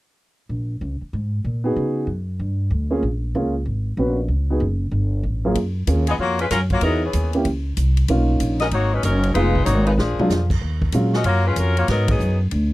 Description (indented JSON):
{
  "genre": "jazz, big band swing",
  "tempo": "190 BPM",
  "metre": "4/4",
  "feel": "swing 64% on 8ths",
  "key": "F# major",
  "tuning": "A4 = 440 Hz",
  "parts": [
    { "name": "upright bass", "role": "bass", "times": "0.5-12.7 s", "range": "F1 to C#3", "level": "-20 LUFS", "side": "equal", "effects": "none" },
    { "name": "warm upright piano", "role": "accompaniment", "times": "1.6-11.1 s", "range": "F#2 to B4", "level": "-21 LUFS", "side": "right 1 dB", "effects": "none" },
    { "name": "swinging big-band drum kit", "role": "drums", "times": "5.6-12.6 s", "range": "crash cymbal, hi-hat, kick drum, ride cymbal, snare drum, toms", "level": "-28 LUFS", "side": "equal", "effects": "none" },
    { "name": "warm saxophone section", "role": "melody", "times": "6.1-12.4 s", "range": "E3 to D#5", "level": "-22 LUFS", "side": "left 2 dB", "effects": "none" }
  ],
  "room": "little or no reverb",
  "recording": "dry, close 1970s-style studio recording",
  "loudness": "-18 LUFS",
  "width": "side -17 dB against mid",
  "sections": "0.5-5.6 A section; 5.6-12.7 B section",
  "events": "drum fill 10.0-10.3; band accent 12.0",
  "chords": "0.5 A#m; 1.1 G#m9; 1.8 C#7sus4; 2.4 G5; 3.0 A#m7; 3.7 G#m11; 4.3 C#7sus4; 4.9 Gsus2; 5.6 F#maj7; 6.8 C#m7; 7.5 N.C.; 8.1 Bmaj9#11; 9.4 Fm7b5; 10.0 A#7b13; 10.6 D#m11; 11.9 G#m7",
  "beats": "| 0.49 0.81 1.12 1.44 | 1.76 2.07 2.39 2.71 | 3.02 3.34 3.66 3.97 | 4.29 4.61 4.92 5.24 | 5.55 5.87 6.19 6.50 | 6.82 7.14 7.45 7.77 | 8.09 8.40 8.72 9.04 | 9.35 9.67 9.98 10.30 | 10.62 10.94 11.25 11.57 | 11.89 12.20 12.52"
}